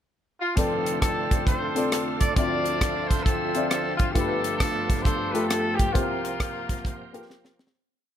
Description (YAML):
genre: uptempo gospel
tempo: 134 BPM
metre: 4/4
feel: swing 65% on 8ths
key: F major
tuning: A4 = 441 Hz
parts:
  - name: clear horn section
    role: melody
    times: 0.4-7.3 s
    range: Bb3 to D5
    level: -27 LUFS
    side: left 1 dB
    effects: none
  - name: warm upright piano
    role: accompaniment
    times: 0.6-7.7 s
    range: F1 to E5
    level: -29 LUFS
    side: left 3 dB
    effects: none
  - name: bright tonewheel organ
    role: sustained chords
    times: 0.6-7.7 s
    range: D3 to E5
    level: -33 LUFS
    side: right 5 dB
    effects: slow rotary speaker, overdrive, chorus vibrato
  - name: tight funk drum kit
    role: drums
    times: 0.6-7.7 s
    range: hi-hat, kick drum, rim click, snare drum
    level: -25 LUFS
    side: equal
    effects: none
room: studio ambience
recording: none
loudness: -22 LUFS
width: side -10 dB against mid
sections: 0.0-0.6 pickup bar; 0.6-7.7 breakdown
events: fade-out 5.9-7.7; drum fill 7.3-7.7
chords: 0.0 N.C.; 0.6 F6; 2.4 Dm9; 4.2 G9; 5.9 C7sus4